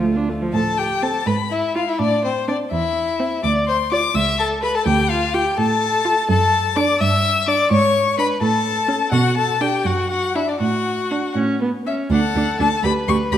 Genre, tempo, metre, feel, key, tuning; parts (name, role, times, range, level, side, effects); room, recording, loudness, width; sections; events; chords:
quick classical-period movement for string quartet; 83 BPM (dotted quarters); 6/8; rubato; A minor, D major from 6.3 s; A4 = 440 Hz
rich violin; second line; 0.0-13.4 s; C4 to E5; -22 LUFS; left 2 dB
rich viola; accompaniment; 0.0-13.4 s; F3 to A4; -26 LUFS; right 2 dB
warm cello; bass; 0.0-13.4 s; C#2 to B2; -22 LUFS; right 3 dB
rich violin; melody; 0.5-13.4 s; C5 to E6; -21 LUFS; left 7 dB
wet recital hall reverb, RT60 1.6 s; -16 LUFS; side -10 dB against mid
0.5-12.1 A section; 12.1-13.4 B section
0.0 Dm; 0.5 Am; 1.3 E/G#; 2.0 Am; 3.4 Dm; 4.2 A/C#; 4.9 Dm; 6.3 D/F#; 7.0 Em7/G; 7.7 G#madd11; 8.4 A; 9.1 Bm; 10.6 D/A; 11.4 A; 12.1 D; 12.8 G